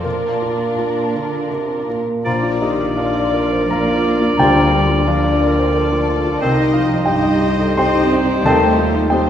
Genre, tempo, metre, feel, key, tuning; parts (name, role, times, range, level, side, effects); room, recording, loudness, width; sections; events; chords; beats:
classical; 78-94 BPM; 3/4; rubato; Bb major; A4 = 440 Hz
muted symphonic violin section; melody; 0.0-9.3 s; Bb4 to Eb5; -27 LUFS; left 3 dB
warm concert grand piano; melody; 0.0-9.3 s; C2 to C6; -17 LUFS; left 1 dB
muted symphonic violin section; second line; 0.0-9.3 s; D4 to Bb4; -28 LUFS; left 2 dB
muted symphonic viola section; accompaniment; 0.0-9.3 s; Eb4 to D5; -27 LUFS; equal
muted symphonic cello section; bass; 0.0-9.3 s; Bb2 to C4; -24 LUFS; right 2 dB
bright oboe; second line; 2.2-8.7 s; C5 to D5; -27 LUFS; right 2 dB
dark bassoon; accompaniment; 2.2-8.7 s; Eb3 to F3; -26 LUFS; right 2 dB
mellow hollow silver concert flute; second line; 2.3-8.8 s; G5 to Bb5; -26 LUFS; left 5 dB
warm clarinet; second line; 2.3-8.7 s; C4 to F4; -27 LUFS; equal
dark French horn section; sustained chords; 2.3-9.3 s; G3 to Eb4; -22 LUFS; equal
bright trumpet; stabs; 2.3-9.3 s; C5 to D5; -24 LUFS; equal
muted symphonic double bass section; bass; 2.3-9.3 s; Bb1 to Eb2; -25 LUFS; right 2 dB
timpani; percussion; 4.4-5.4 s; D3; -28 LUFS; equal
wet recital hall reverb, RT60 1.3 s; recorded in a church or concert hall; -14 LUFS; side -9 dB against mid
0.0-2.3 A section; 2.3-9.3 B section
0.0 Bb; 4.4 Bb/D; 6.4 Cm; 8.5 Cm/Eb
| 0.04 0.78 1.51 | 2.25 2.97 3.71 | 4.38 5.06 5.75 | 6.41 7.06 7.77 | 8.45 9.10